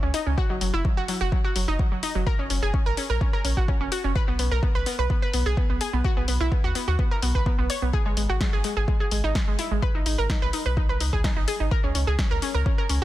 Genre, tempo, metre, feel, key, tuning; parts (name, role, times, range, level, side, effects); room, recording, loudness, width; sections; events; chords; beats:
progressive house; 127 BPM; 4/4; straight; G# minor; A4 = 439 Hz
analog pluck; arpeggios; 0.0-13.0 s; F#3 to C#5; -27 LUFS; right 1 dB; chorus, sidechain pumping, tape echo
round analog bass; bass; 0.0-13.0 s; F#1 to D#2; -26 LUFS; equal; sidechain pumping
deep house drum kit; drums; 0.1-13.0 s; hi-hat, snare drum; -31 LUFS; left 2 dB; overdrive, sidechain pumping on hats
electronic kick drum; drums; 0.4-12.8 s; -24 LUFS; equal; overdrive
little or no reverb; dense, heavily limited modern master; -22 LUFS; side -14 dB against mid
0.0-13.0 A section
0.4 F#; 4.2 B5; 7.9 G#m; 11.7 C#5
| 0.38 0.85 1.32 1.79 | 2.27 2.74 3.21 3.68 | 4.16 4.63 5.10 5.57 | 6.04 6.52 6.99 7.46 | 7.93 8.41 8.88 9.35 | 9.82 10.30 10.77 11.24 | 11.71 12.19 12.66